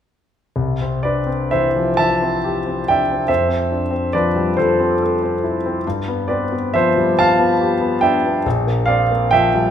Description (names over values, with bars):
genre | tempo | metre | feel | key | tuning
classical, impressionist solo piano | 40-49 BPM (dotted quarters) | 6/8 | rubato | C major | A4 = 440 Hz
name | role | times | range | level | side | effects
clear concert grand piano | solo | 0.6-9.7 s | Bb1 to A5 | -15 LUFS | equal | none
room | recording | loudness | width
wet recital hall reverb, RT60 1.4 s | minimal, uncompressed stereo recording | -15 LUFS | side -9 dB against mid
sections
0.6-9.7 A section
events
none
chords
0.6 C69; 3.3 Fmaj7; 5.8 G9; 8.4 Bb69